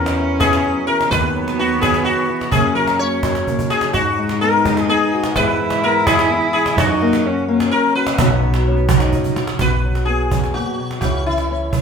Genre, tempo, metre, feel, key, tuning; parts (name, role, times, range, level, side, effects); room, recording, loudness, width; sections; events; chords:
acoustic folk duo or small band; 127 BPM; 3/4; straight; B major; A4 = 440 Hz
sitar; melody; 0.0-11.8 s; E4 to C#5; -19 LUFS; left 2 dB
warm cello; second line; 0.0-9.3 s; B3 to E4; -21 LUFS; right 2 dB
fingerpicked acoustic archtop guitar; accompaniment; 0.0-11.8 s; F#2 to G#4; -22 LUFS; left 4 dB
upright bass; bass; 0.0-11.8 s; G#1 to G#2; -23 LUFS; equal
cajon; percussion; 0.1-11.8 s; -21 LUFS; right 4 dB
moderate studio reverb, RT60 0.7 s; minimal, uncompressed stereo recording; -15 LUFS; side -6 dB against mid
0.0-9.6 A section; 9.6-11.8 B section
drum fill 3.5-3.9, 9.1-9.6
0.0 E; 1.1 B/D#; 2.5 F#; 3.9 G#m7; 5.4 E/G#; 6.8 F#7; 8.2 Badd9; 9.6 B5; 11.0 C#m